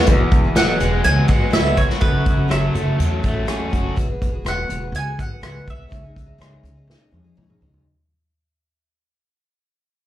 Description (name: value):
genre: folk rock and heartland rock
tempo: 124 BPM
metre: 4/4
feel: straight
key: E major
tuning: A4 = 439 Hz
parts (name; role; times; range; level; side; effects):
- picked twelve-string acoustic guitar; accompaniment; 0.0-7.9 s; C#3 to A4; -28 LUFS; left 4 dB; slapback echo
- overdriven electric guitar; riff; 0.0-4.0 s; E2 to F#4; -23 LUFS; equal; slapback echo
- upright bass; bass; 0.0-7.8 s; E1 to B2; -22 LUFS; equal; none
- unplugged drum kit; drums; 0.1-7.8 s; hi-hat, kick drum, rim click, snare drum, toms; -20 LUFS; equal; none
- mandolin; melody; 0.6-7.3 s; B4 to G#5; -24 LUFS; right 2 dB; slapback echo, tape echo
room: little or no reverb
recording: live gig heard through the venue's PA, club reverb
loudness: -16 LUFS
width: side -13 dB against mid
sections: 0.1-7.8 A section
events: fade-out 0.1-7.8; drum fill 6.9-7.8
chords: 0.1 Eadd9; 2.0 F#m; 4.0 Eadd9; 5.9 C#madd9